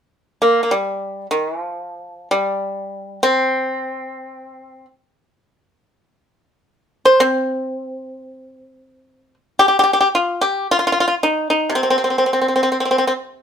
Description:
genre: chinese traditional, Chinese solo plucked strings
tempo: free time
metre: none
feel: none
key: C yu mode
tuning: A4 = 440 Hz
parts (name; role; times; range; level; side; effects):
- pipa; solo; 0.4-13.4 s; C3 to C5; -16 LUFS; equal; none
room: moderate studio reverb, RT60 0.7 s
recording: band playing live in one room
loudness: -16 LUFS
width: side -8 dB against mid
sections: 0.0-9.6 A section; 9.6-13.4 B section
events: none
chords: none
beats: free time

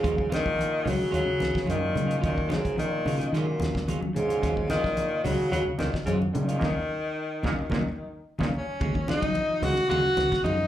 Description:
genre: afrobeat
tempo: 109 BPM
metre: 4/4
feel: straight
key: Eb minor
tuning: A4 = 441 Hz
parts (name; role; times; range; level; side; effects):
- clear tenor saxophone; melody; 0.0-10.7 s; Bb2 to Gb4; -27 LUFS; left 1 dB; slapback echo, plate reverb
- brilliant trombone; second line; 0.0-8.5 s; Gb2 to Db3; -36 LUFS; right 2 dB; plate reverb, slapback echo
- electric guitar at the edge of break-up; arpeggios; 0.0-10.7 s; Db3 to Gb3; -34 LUFS; left 4 dB; analog chorus, slapback echo
- clean electric guitar; stabs; 0.0-10.6 s; Gb3 to F4; -35 LUFS; right 4 dB; plate reverb, slapback echo
- fingered electric bass; bass; 0.0-10.7 s; Db2 to Eb3; -29 LUFS; equal; none
- damped 70s drum kit; drums; 0.0-10.6 s; hi-hat, kick drum, ride cymbal, snare drum; -33 LUFS; equal; none
- congas; percussion; 0.0-10.6 s; none; -34 LUFS; right 1 dB; slapback echo
room: moderate club reverb, RT60 0.6 s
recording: live gig heard through the venue's PA, club reverb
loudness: -24 LUFS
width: side -12 dB against mid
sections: 0.0-8.8 A section; 8.8-10.7 A section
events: band accent 6.6-8.8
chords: 0.0 Ebm11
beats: | 0.03 0.58 1.13 1.68 | 2.22 2.77 3.32 3.87 | 4.42 4.97 5.51 6.06 | 6.61 7.16 7.71 8.25 | 8.80 9.35 9.90 10.45

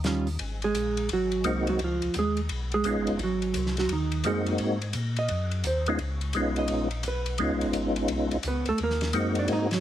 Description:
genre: soul jazz organ trio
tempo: 172 BPM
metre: 4/4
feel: swing 65% on 8ths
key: unclear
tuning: A4 = 440 Hz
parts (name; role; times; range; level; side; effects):
- hollow-body jazz guitar; accompaniment; 0.0-9.8 s; Eb3 to Eb5; -28 LUFS; right 3 dB; none
- tonewheel organ; bass; 0.0-9.8 s; F1 to Bb2; -31 LUFS; left 1 dB; overdrive, chorus vibrato, slow rotary speaker
- warm soul drum kit; drums; 0.0-9.8 s; hi-hat, ride cymbal, snare drum; -36 LUFS; left 2 dB; none
- percussive tonewheel organ; melody; 1.4-9.7 s; Ab3 to Gb4; -27 LUFS; left 1 dB; chorus vibrato, fast rotary speaker
room: light reverb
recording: heavily compressed radio sound, multiband compression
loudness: -25 LUFS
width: side -11 dB against mid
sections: 0.4-9.8 A section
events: hollow-body jazz guitar solo 0.4-9.8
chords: 0.4 Ab9; 1.8 Db9; 3.2 Ab9; 6.0 Db9; 8.8 Ab9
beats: 0.06 | 0.41 0.76 1.11 1.46 | 1.80 2.15 2.50 2.85 | 3.20 3.55 3.90 4.25 | 4.60 4.95 5.30 5.65 | 6.00 6.35 6.70 7.05 | 7.40 7.75 8.10 8.44 | 8.79 9.14 9.49

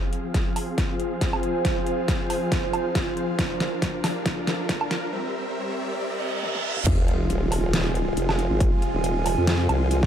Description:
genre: heavy wobble dubstep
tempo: 138 BPM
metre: 4/4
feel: swing 55% on 16ths, half-time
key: F dorian, F minor from 6.9 s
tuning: A4 = 440 Hz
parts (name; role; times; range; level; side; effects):
- supersaw chords; sustained chords; 0.0-10.1 s; C3 to F5; -29 LUFS; equal; sidechain pumping, low-pass filter
- riser, reverse cymbal and sub drop; sound effects; 2.9-8.6 s; none; -32 LUFS; right 1 dB; none
- warbly tape-like pad; texture; 0.5-10.1 s; F4 to Ab5; -30 LUFS; right 2 dB; chorus, built-in reverb, phaser, sidechain pumping
- dubstep drum kit; drums; 0.1-10.1 s; crash cymbal, hi-hat, snare drum, toms, woodblock; -28 LUFS; right 1 dB; overdrive
- electronic kick drum; drums; 0.3-10.1 s; none; -25 LUFS; equal; overdrive
- formant-sweep wobble bass; bass; 6.9-10.1 s; Eb1 to F2; -24 LUFS; equal; chorus, overdrive
room: light reverb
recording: dark, warm production, high-pass filter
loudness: -22 LUFS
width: side -9 dB against mid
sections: 0.0-6.9 A section; 6.9-10.1 B section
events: build-up 0.0-6.9; drum fill 0.0-5.1, 6.4-6.9; filter sweep on supersaw synth 0.0-6.9; filter sweep 0.0-6.9; riser 2.9-6.9; break 5.1-6.9; reverse cymbal 6.0-6.9; drop 6.9-10.1; impact 6.9-8.6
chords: 0.0 Fm; 3.4 Bb; 5.1 C7; 6.9 Fm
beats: 0.34 0.78 1.21 | 1.65 2.08 2.52 2.95 | 3.39 3.82 4.26 4.69 | 5.13 5.56 6.00 6.43 | 6.87 7.30 7.74 8.17 | 8.61 9.04 9.47 9.91

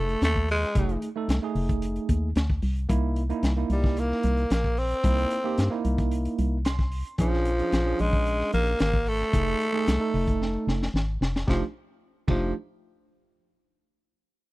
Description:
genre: straight-eighth soul blues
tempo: 112 BPM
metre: 4/4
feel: straight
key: F mixolydian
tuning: A4 = 441 Hz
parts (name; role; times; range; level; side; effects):
- growling tenor saxophone; melody; 0.0-12.5 s; F3 to C4; -27 LUFS; equal; none
- tine electric piano; accompaniment; 0.0-12.5 s; A3 to C6; -30 LUFS; right 3 dB; medium stereo tremolo
- organ-like FM bass; bass; 0.0-12.5 s; F1 to G2; -26 LUFS; equal; none
- crunchy breakbeat drum kit; drums; 0.1-12.4 s; crash cymbal, hi-hat, kick drum, snare drum; -28 LUFS; equal; none
room: small room ambience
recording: dry, close 1970s-style studio recording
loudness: -23 LUFS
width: side -19 dB against mid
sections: 0.0-11.5 A section; 11.5-13.6 B section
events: tine electric piano fill 6.4-7.2; drum fill 10.4-11.5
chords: 0.0 F7#9; 2.9 C7#9; 7.2 Bb7#9; 9.3 F7#9; 11.5 F13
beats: 0.22 | 0.75 1.29 1.83 2.36 | 2.90 3.43 3.97 4.51 | 5.04 5.58 6.12 6.65 | 7.19 7.72 8.26 8.80 | 9.33 9.87 10.40 10.94 | 11.48 12.01

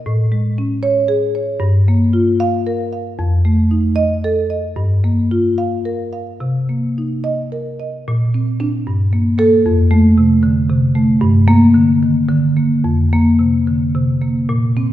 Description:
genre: classical, contemporary piece for solo marimba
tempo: 71-78 BPM (dotted quarters)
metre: 6/8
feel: rubato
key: unclear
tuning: A4 = 440 Hz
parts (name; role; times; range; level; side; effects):
- marimba with soft mallets; solo; 0.0-14.9 s; F2 to F5; -13 LUFS; equal; none
room: wet scoring stage reverb, RT60 1.8 s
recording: heard from further back in the room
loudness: -13 LUFS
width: side -13 dB against mid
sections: 0.0-8.1 A section; 8.1-14.9 B section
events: none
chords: 0.1 Amaj7; 1.6 Gm7; 3.2 F7; 4.8 Gm7; 6.4 Cm7; 8.1 Bbadd9; 8.9 Gmadd9; 9.6 F; 11.2 Gm; 12.8 Fsus4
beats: | 0.05 0.83 | 1.61 2.40 | 3.19 3.98 | 4.77 5.57 | 6.40 7.24 | 8.06 8.86 | 9.65 10.42 | 11.21 12.01 | 12.83 13.66 | 14.49

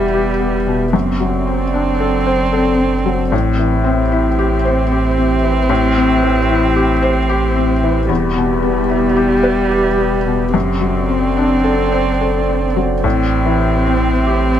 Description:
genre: neoclassical piano and strings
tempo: 75 BPM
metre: 3/4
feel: rubato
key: A dorian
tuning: A4 = 440 Hz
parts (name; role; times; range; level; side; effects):
- dark viola; accompaniment; 0.0-14.6 s; G3 to C4; -19 LUFS; right 2 dB; none
- felt-muted upright piano; accompaniment; 0.0-14.6 s; E2 to C5; -17 LUFS; left 4 dB; none
- warbly tape-like pad; sustained chords; 0.0-14.6 s; B3 to E5; -21 LUFS; right 2 dB; chorus, built-in reverb
- punchy sub bass; bass; 0.0-14.6 s; E1 to A1; -20 LUFS; right 1 dB; none
room: little or no reverb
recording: none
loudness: -13 LUFS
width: side -10 dB against mid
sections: 0.0-13.0 A section; 13.0-14.6 B section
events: none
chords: 0.0 Em; 0.9 D7/F#; 3.3 Am7; 8.1 Em; 10.5 D7/F#; 13.0 Am7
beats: 0.14 | 0.94 1.73 2.53 | 3.33 4.12 4.91 | 5.70 6.49 7.30 | 8.10 8.89 9.71 | 10.54 11.38 12.21 | 13.05 13.87

